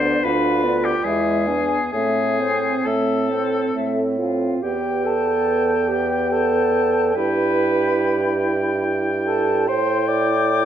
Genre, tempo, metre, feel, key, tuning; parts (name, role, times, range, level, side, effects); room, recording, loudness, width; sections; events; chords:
classical, slow romantic movement for wind quintet; 64-80 BPM; 3/4; rubato; A minor, E minor from 4.6 s; A4 = 440 Hz
concert flute; melody; 0.0-10.7 s; C5 to D6; -26 LUFS; left 6 dB
clear oboe; second line; 0.0-10.7 s; G4 to G5; -24 LUFS; left 2 dB
warm French horn; accompaniment; 0.0-10.7 s; G#3 to E4; -26 LUFS; equal
warm clarinet; accompaniment; 0.0-10.7 s; C4 to D5; -23 LUFS; right 5 dB
warm bassoon; bass; 0.0-10.7 s; D2 to A2; -23 LUFS; right 1 dB
wet recital hall reverb, RT60 1.4 s; dark, warm production; -18 LUFS; side -10 dB against mid
0.0-4.6 A section; 4.6-10.7 B section
0.0 Bdim/D; 1.0 E; 1.9 Am; 4.6 Em; 7.2 Em/G; 9.7 A5